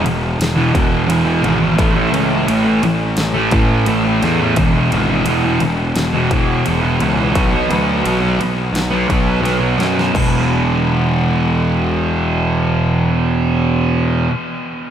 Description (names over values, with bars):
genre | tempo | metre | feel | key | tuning
rock, shoegaze and dream pop | 86 BPM | 4/4 | straight | unclear | A4 = 440 Hz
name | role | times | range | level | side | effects
fuzz guitar | riff | 0.0-14.3 s | E2 to B3 | -15 LUFS | right 1 dB | distortion, lush chorus
fuzz picked electric bass | bass | 0.0-14.3 s | E1 to F#2 | -19 LUFS | equal | overdrive
big-room dance drum kit | drums | 0.1-10.3 s | crash cymbal, kick drum, ride cymbal, snare drum | -22 LUFS | left 1 dB | none
room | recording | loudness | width
wet huge ambient reverb, RT60 7.5 s | dreamy mix soaked in reverb | -13 LUFS | side -9 dB against mid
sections
0.0-10.1 A section; 10.1-12.9 B section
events
drum fill 9.4-10.1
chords
0.0 E; 1.8 A5; 4.6 E5; 7.3 B5; 10.1 E5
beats
0.39 1.09 | 1.78 2.48 3.17 3.87 | 4.56 5.26 5.96 6.65 | 7.35 8.05 8.74 9.44 | 10.14 10.84 11.54 12.24